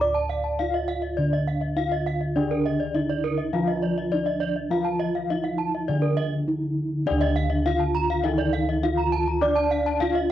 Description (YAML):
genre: gamelan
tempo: 102 BPM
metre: 4/4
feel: straight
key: D pelog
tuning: A4 = 440 Hz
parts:
  - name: gamelan-type bronze metallophone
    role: melody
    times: 0.0-10.3 s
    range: D4 to D5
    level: -28 LUFS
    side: right 1 dB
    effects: cassette tape
  - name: gamelan-type bronze metallophone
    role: arpeggios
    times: 0.0-10.2 s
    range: D5 to D6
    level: -30 LUFS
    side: left 7 dB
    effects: cassette tape
  - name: gamelan-type bossed gongs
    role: bass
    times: 0.0-10.3 s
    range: D2 to D5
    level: -26 LUFS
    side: equal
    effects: none
  - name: gamelan-type bronze metallophone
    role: arpeggios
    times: 0.1-10.3 s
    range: Bb4 to Bb5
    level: -30 LUFS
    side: right 8 dB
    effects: cassette tape
  - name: gamelan-type bronze metallophone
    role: accompaniment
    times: 2.4-10.3 s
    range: D3 to D4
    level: -31 LUFS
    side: left 6 dB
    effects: cassette tape
room: moderate studio reverb, RT60 0.5 s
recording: home recording on cassette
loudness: -22 LUFS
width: side -12 dB against mid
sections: 0.0-7.1 A section; 7.1-10.3 A section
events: none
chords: none